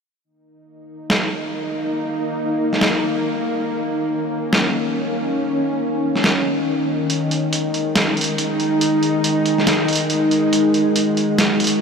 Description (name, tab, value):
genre	deep dubstep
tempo	140 BPM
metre	4/4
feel	swing 60% on 16ths, half-time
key	Eb minor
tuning	A4 = 440 Hz
part	bowed-like drone	sustained chords	1.0-11.8 s	Eb3 to Gb4	-19 LUFS	equal	built-in reverb
part	trip hop sampler-style drum kit	drums	1.1-11.8 s	hi-hat, snare drum	-21 LUFS	right 1 dB	none
room	wet huge ambient reverb, RT60 6.3 s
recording	dreamy mix soaked in reverb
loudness	-17 LUFS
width	side -6 dB against mid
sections	0.2-11.8 A section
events	none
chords	0.2 Eb5